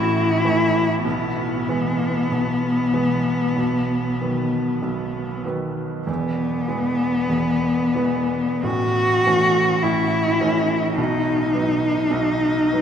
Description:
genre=classical, romantic duo for cello and grand piano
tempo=42-54 BPM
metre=4/4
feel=rubato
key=E major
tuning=A4 = 440 Hz
part: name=rich cello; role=melody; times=0.0-12.8 s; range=B3 to F#4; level=-20 LUFS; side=left 2 dB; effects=none
part: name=bright baby grand piano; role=accompaniment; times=0.0-12.8 s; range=E1 to E4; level=-23 LUFS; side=right 2 dB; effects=none
room=wet cathedral reverb, RT60 6.8 s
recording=recorded in a church or concert hall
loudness=-18 LUFS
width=side -8 dB against mid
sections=0.0-12.8 A section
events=none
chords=0.0 A5; 1.1 E/B; 3.6 B; 6.1 E; 8.6 A; 11.0 B

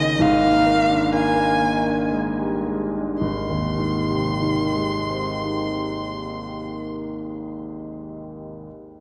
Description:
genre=classical, impressionist duo for violin and grand piano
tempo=53-67 BPM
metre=3/4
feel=rubato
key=Ab major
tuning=A4 = 440 Hz
part: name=warm violin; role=melody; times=0.0-6.9 s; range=Eb5 to C6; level=-26 LUFS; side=equal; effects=none
part: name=warm concert grand piano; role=accompaniment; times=0.0-8.7 s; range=Ab1 to Bb4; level=-24 LUFS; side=equal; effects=none
room=wet church reverb, RT60 3.5 s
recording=dark, warm production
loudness=-22 LUFS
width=mono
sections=0.0-3.2 A section; 3.2-6.4 B section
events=slowing down 0.0-3.2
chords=0.2 Bb7/Ab; 3.2 Ab

